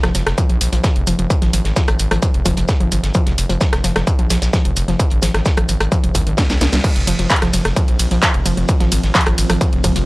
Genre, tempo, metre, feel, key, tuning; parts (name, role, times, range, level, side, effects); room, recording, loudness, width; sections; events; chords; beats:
driving peak-time techno; 130 BPM; 4/4; straight; F minor; A4 = 440 Hz
warbly dusty pluck; riff; 0.0-10.1 s; Eb3 to G3; -23 LUFS; equal; chorus, sidechain pumping, tape echo
gritty driven synth bass; bass; 0.0-10.0 s; F1 to C2; -18 LUFS; equal; tube saturation, sidechain pumping
techno drum kit; drums; 0.0-10.0 s; crash cymbal, handclaps, hi-hat, ride cymbal, rim click, snare drum; -20 LUFS; equal; overdrive
warm soul drum kit; drums; 0.0-10.1 s; hi-hat, shaker, snare drum; -27 LUFS; equal; high-pass filter on hats, high-pass filter on snare, high-pass filter on perc, high-pass filter on room
electronic kick drum; drums; 0.4-9.9 s; -16 LUFS; equal; distortion, overdrive
deep dark ambient pad; drone; 7.7-10.1 s; F3 to C4; -28 LUFS; right 2 dB; chorus, built-in reverb, sidechain pumping
studio reverb; dry, gritty hardware recording, transformer saturation; -14 LUFS; side -21 dB against mid
0.0-6.8 A section; 6.8-10.1 B section
drum fill 6.4-6.8; drop 6.8-10.1
0.0 F5
0.38 0.84 | 1.30 1.76 2.23 2.69 | 3.15 3.61 4.07 4.53 | 4.99 5.46 5.92 6.38 | 6.84 7.30 7.76 8.22 | 8.69 9.15 9.61